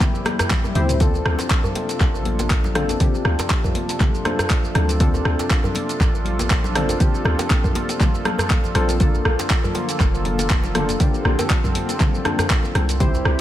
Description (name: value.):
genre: afro house.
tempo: 120 BPM.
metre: 4/4.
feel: swing 55% on 16ths.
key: D minor.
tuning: A4 = 440 Hz.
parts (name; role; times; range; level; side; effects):
warm analog pad; sustained chords; 0.0-13.4 s; C3 to A4; -27 LUFS; right 1 dB; chorus, tremolo, sidechain pumping.
warm analog keys; stabs; 0.0-13.4 s; Bb3 to C5; -27 LUFS; left 2 dB; chorus, sidechain pumping, analog delay.
deep house drum kit; drums; 0.0-13.4 s; handclaps, hi-hat, rim click, shaker, snare drum, toms; -24 LUFS; equal; none.
electronic kick drum; drums; 0.0-13.1 s; none; -19 LUFS; equal; none.
congas; percussion; 0.0-13.1 s; none; -30 LUFS; left 4 dB; analog delay.
djembe; percussion; 0.1-13.2 s; none; -30 LUFS; right 1 dB; analog delay.
warm 808-style bass; bass; 0.8-13.4 s; F1 to D2; -22 LUFS; equal; tube saturation, sidechain pumping.
room: light reverb, digital ambience.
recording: echo-heavy mix.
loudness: -17 LUFS.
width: side -13 dB against mid.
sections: 0.0-13.4 A section.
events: drum fill 0.5-1.0.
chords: 0.0 C; 1.0 Dm7; 9.0 Bbmaj7.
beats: 0.00 0.50 | 1.00 1.50 2.00 2.50 | 3.00 3.50 4.00 4.50 | 5.00 5.50 6.00 6.50 | 7.00 7.50 8.00 8.50 | 9.00 9.50 10.00 10.50 | 11.00 11.50 12.00 12.50 | 13.00.